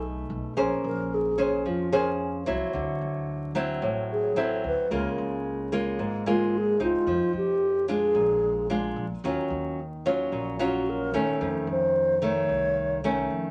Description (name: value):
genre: bossa nova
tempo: 111 BPM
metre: 4/4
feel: straight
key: Bb minor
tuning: A4 = 441 Hz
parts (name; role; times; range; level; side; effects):
- mellow wooden-headed alto flute; melody; 0.0-13.0 s; F4 to Db5; -28 LUFS; equal; none
- nylon-string guitar; accompaniment; 0.0-13.5 s; F2 to C5; -30 LUFS; equal; none
- upright bass; bass; 0.0-13.4 s; Ab1 to F2; -40 LUFS; equal; none
room: moderate studio reverb, RT60 0.6 s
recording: vinyl crackle, lossy compression artefacts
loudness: -27 LUFS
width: mono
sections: 0.0-13.5 A section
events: alto flute solo 0.0-13.5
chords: 0.0 B6; 0.6 Bbm9; 2.7 D9; 4.9 Db6; 7.1 Fm7; 8.2 Bb7; 9.2 Ebm9; 11.4 F7b13